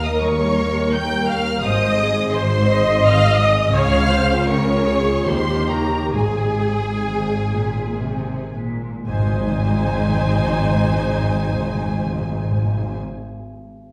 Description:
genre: classical, slow romantic movement for symphony orchestra.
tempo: 57-87 BPM.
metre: 3/4.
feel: rubato.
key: Ab major.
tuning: A4 = 441 Hz.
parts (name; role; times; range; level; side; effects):
warm studio violin section; melody; 0.0-13.0 s; Ab5 to G6; -29 LUFS; equal; none.
rich studio violin section; second line; 0.0-13.0 s; Ab4 to Ab5; -28 LUFS; equal; none.
rich studio viola section; accompaniment; 0.0-13.0 s; Eb4 to Eb5; -25 LUFS; equal; none.
concert harp; arpeggios; 0.0-13.2 s; Ab2 to Eb5; -29 LUFS; equal; none.
rich studio double bass section; bass; 0.0-13.0 s; Ab1 to Eb2; -26 LUFS; equal; none.
warm studio cello section; bass; 0.0-13.0 s; Eb2 to Eb3; -27 LUFS; equal; none.
timpani; percussion; 1.6-2.6, 6.1-13.0 s; Ab2; -27 LUFS; equal; none.
room: wet recital hall reverb, RT60 1.5 s.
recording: heard from further back in the room.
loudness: -19 LUFS.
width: mono.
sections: 0.0-9.1 A section; 9.1-13.9 B section.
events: slowing down 2.7-9.1.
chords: 0.0 Eb7; 1.6 Ab; 3.7 Db; 5.3 Eb7; 6.1 Ab.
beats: 0.21 0.92 | 1.62 2.32 3.03 | 3.73 4.47 5.26 | 6.13 7.08 8.05 | 9.07 10.09 11.10 | 12.10 13.11.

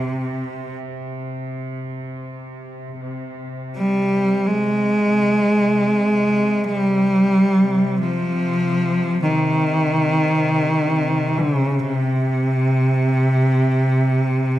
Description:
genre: caucasian folk, Caucasian lament.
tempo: free time.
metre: none.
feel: none.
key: C phrygian.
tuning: A4 = 440 Hz.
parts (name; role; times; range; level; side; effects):
bright cello; melody; 0.0-14.6 s; C3 to Ab3; -17 LUFS; equal; none.
clear studio cello section; drone; 0.0-14.6 s; C3; -27 LUFS; left 1 dB; none.
room: moderate recital hall reverb, RT60 1.4 s.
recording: dark, warm production.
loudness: -16 LUFS.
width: side -14 dB against mid.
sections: 0.0-3.0 A section; 3.0-14.6 A section.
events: none.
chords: none.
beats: free time.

